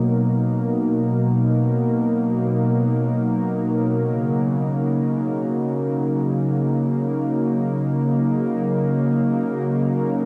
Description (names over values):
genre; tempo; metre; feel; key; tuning
ambient; free time; none; none; unclear; A4 = 440 Hz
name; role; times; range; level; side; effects
warm analog pad; solo; 0.0-10.3 s; B2 to A#4; -21 LUFS; equal; chorus, diffuse ambient delay
room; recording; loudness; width
wet huge ambient reverb, RT60 8.0 s; in a vast, echoing space; -21 LUFS; mono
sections
0.0-10.3 A section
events
none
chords
0.0 Bmaj7; 4.0 D#m7